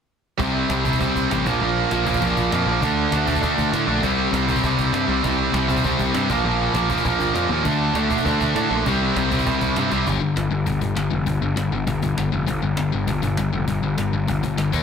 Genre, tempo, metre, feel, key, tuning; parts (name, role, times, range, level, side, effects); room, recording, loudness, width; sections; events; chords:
punk rock; 199 BPM; 4/4; straight; G minor; A4 = 441 Hz
sludgy distorted guitar; riff; 0.4-14.8 s; G2 to Eb4; -22 LUFS; left 8 dB; overdrive
tight distorted guitar; riff; 0.4-10.1 s; Bb2 to D4; -22 LUFS; right 12 dB; distortion
fuzz picked electric bass; bass; 0.4-14.8 s; F1 to A2; -24 LUFS; right 1 dB; overdrive
cajon; drums; 0.4-14.8 s; -30 LUFS; right 1 dB
light reverb, digital ambience; dense, heavily limited modern master; -18 LUFS; side -7 dB against mid
0.4-10.1 A section; 10.1-14.8 B section
drum fill 9.9
0.4 C5; 1.5 Bb5; 2.8 D5; 4.0 C5; 6.3 Bb5; 7.7 D5; 8.9 C5; 10.1 G5